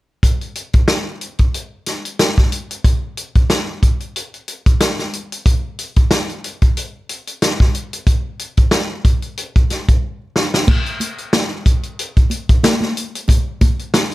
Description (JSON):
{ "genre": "funk", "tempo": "92 BPM", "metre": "4/4", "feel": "swing 56% on 16ths", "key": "none", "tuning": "none", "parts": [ { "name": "vintage drum kit", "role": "drums", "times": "0.2-14.1 s", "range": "crash cymbal, hi-hat, kick drum, snare drum", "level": "-14 LUFS", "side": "equal", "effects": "none" }, { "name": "congas", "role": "percussion", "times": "10.7-14.1 s", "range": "none", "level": "-21 LUFS", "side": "equal", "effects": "none" } ], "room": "little or no reverb", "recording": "none", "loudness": "-15 LUFS", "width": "side -18 dB against mid", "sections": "0.2-10.7 A section; 10.7-14.1 B section", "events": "drum fill 10.0-10.7", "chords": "none" }